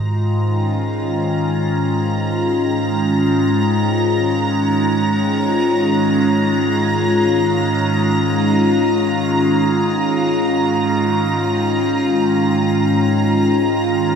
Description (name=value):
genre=ambient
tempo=free time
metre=none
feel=none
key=unclear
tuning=A4 = 442 Hz
part: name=evolving wavetable pad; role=sustained chords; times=0.0-14.2 s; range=G#2 to E#4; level=-15 LUFS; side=equal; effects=phaser, built-in reverb
part: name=clear studio violin section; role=texture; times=0.0-14.2 s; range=A#5 to A#6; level=-23 LUFS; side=right 2 dB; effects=none
room=wet lush hall reverb, RT60 2.7 s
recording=dreamy mix soaked in reverb, cassette tape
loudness=-15 LUFS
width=side -6 dB against mid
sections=0.0-14.2 A section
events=none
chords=0.0 A#m/G#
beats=free time